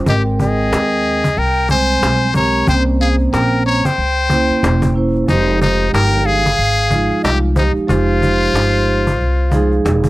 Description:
hip hop, jazz-hop; 92 BPM; 4/4; swing 60% on 16ths; F minor; A4 = 440 Hz
vibraphone with soft mallets; accompaniment; 0.0-10.1 s; F3 to G5; -18 LUFS; right 3 dB
upright bass; bass; 0.0-10.1 s; E1 to Eb2; -18 LUFS; equal
trumpet with metal mute; melody; 0.1-9.8 s; Eb4 to Db5; -18 LUFS; left 3 dB
breathy silver concert flute; second line; 0.1-9.8 s; C5 to Bb5; -22 LUFS; right 3 dB
cajon; drums; 0.1-10.1 s; -20 LUFS; equal
little or no reverb; -12 LUFS; side -18 dB against mid
0.0-10.1 A section
0.1 Abmaj9; 2.7 C7b9; 5.3 Fm9
| 0.07 0.72 1.37 2.02 | 2.67 3.33 3.98 4.63 | 5.28 5.93 6.59 7.24 | 7.89 8.54 9.20 9.85

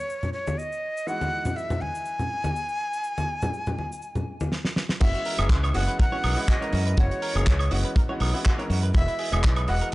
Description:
nu-disco, nu disco; 122 BPM; 4/4; swing 54% on 16ths; F# mixolydian; A4 = 441 Hz
breathy bright jazz flute; melody; 0.0-9.9 s; C#5 to G#5; -30 LUFS; equal; vintage 12-bit sampler grit, analog delay
clear concert grand piano; accompaniment; 0.0-9.9 s; E3 to E5; -33 LUFS; equal; sidechain pumping
cabasa and congas; percussion; 0.1-4.5 s; -29 LUFS; left 1 dB
damped 70s drum kit; drums; 4.5-9.9 s; crash cymbal, handclaps, hi-hat, snare drum, woodblock; -29 LUFS; right 1 dB; studio ambience
direct-recorded clean electric guitar; riff; 5.0-9.9 s; E3 to C#5; -36 LUFS; right 3 dB; lush chorus
modern bright fingered electric bass; bass; 5.0-9.8 s; E1 to F#2; -24 LUFS; equal
kick drum; drums; 5.0-9.5 s; -21 LUFS; equal; studio ambience
studio ambience; dry, gritty hardware recording, transformer saturation, nothing above 10.9 kHz; -23 LUFS; side -19 dB against mid
0.0-5.0 A section; 5.0-9.9 B section
drum fill 4.5-5.0; drop 5.0-9.9
0.0 F#9sus4; 1.1 Emaj7; 5.0 F#9sus4; 8.9 Emaj7
0.09 0.59 | 1.08 1.57 2.06 2.55 | 3.04 3.54 4.03 4.52 | 5.01 5.50 6.00 6.49 | 6.98 7.47 7.96 8.46 | 8.95 9.44 9.93

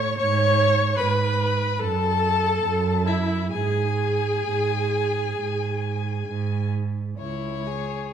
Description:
classical, slow romantic movement for string quartet; 60-77 BPM; 4/4; rubato; C# minor; A4 = 439 Hz
muted violin; melody; 0.0-8.1 s; C#5 to C#6; -28 LUFS; left 10 dB
muted violin; second line; 0.0-8.1 s; E4 to C#5; -27 LUFS; left 2 dB
muted viola; accompaniment; 0.0-6.7 s; E4 to C#5; -27 LUFS; right 3 dB
muted cello; bass; 0.0-8.1 s; C#2 to G#2; -25 LUFS; right 4 dB
wet recital hall reverb, RT60 1.4 s; -21 LUFS; side -8 dB against mid
0.0-7.2 A section
0.2 G#madd11; 1.8 F#m; 3.5 N.C.; 7.2 C#m
| 0.19 0.99 1.80 2.63 | 3.52 4.46 5.38 6.26 | 7.19

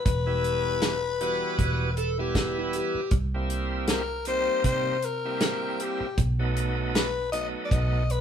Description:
straight-eighth soul blues; 78 BPM; 4/4; swing 56% on 16ths; E harmonic minor; A4 = 438 Hz
growling tenor saxophone; melody; 0.0-8.2 s; G4 to D#5; -28 LUFS; left 6 dB
vintage muted fingered electric bass; bass; 0.1-8.2 s; E1 to C3; -29 LUFS; right 1 dB
warm soul drum kit; drums; 0.1-8.2 s; hi-hat, kick drum, snare drum; -26 LUFS; equal
bright tonewheel organ; accompaniment; 0.3-8.0 s; E3 to F#4; -31 LUFS; right 3 dB; slow rotary speaker, overdrive
overdriven slide guitar; second line; 1.2-3.1 s; E4 to B4; -31 LUFS; right 2 dB
moderate studio reverb, RT60 0.8 s; band playing live in one room; -24 LUFS; side -8 dB against mid
0.0-8.2 A section
0.0 Em; 3.1 C7; 6.2 B7
| 0.05 0.82 1.59 2.35 | 3.12 3.89 4.65 5.42 | 6.18 6.95 7.71

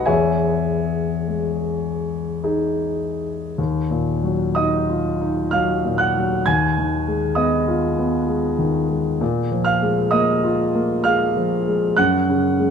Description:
classical, impressionist solo piano; 48-67 BPM; 3/4; rubato; Eb minor; A4 = 442 Hz
warm concert grand piano; solo; 0.0-12.7 s; Eb2 to Ab6; -18 LUFS; equal
moderate concert hall reverb, RT60 2.4 s; close, detailed microphones; -18 LUFS; side -7 dB against mid
0.0-3.6 A section; 3.6-12.7 B section
0.1 Emaj7; 3.6 Ebmadd9; 6.5 Abm6/Eb; 9.2 Bb7sus4; 12.0 Gbsus2
| 0.07 1.27 2.44 | 3.58 4.58 5.54 | 6.46 7.37 8.28 | 9.21 10.13 11.05 | 11.98

